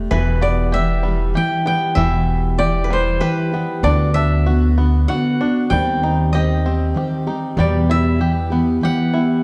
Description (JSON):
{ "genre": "acoustic folk duo or small band", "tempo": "96 BPM", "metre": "3/4", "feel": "straight", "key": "unclear", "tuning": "A4 = 441 Hz", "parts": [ { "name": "picked steel-string acoustic guitar", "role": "accompaniment", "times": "0.0-9.4 s", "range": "E2 to G4", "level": "-22 LUFS", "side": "equal", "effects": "none" }, { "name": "upright bass", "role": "bass", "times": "0.0-8.8 s", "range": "E1 to E2", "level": "-20 LUFS", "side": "equal", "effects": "none" }, { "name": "koto", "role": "melody", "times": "0.1-9.4 s", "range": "B4 to G5", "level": "-24 LUFS", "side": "equal", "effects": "none" }, { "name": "bluegrass banjo", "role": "arpeggios", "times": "0.1-9.4 s", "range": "D3 to G4", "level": "-29 LUFS", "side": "equal", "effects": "none" } ], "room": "moderate scoring stage reverb, RT60 1.8 s", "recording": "dark, warm production", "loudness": "-18 LUFS", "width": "mono", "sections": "0.1-9.4 A section", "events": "none", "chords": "0.1 Em; 3.8 Bm/D; 5.7 Cm/Eb; 7.6 Em" }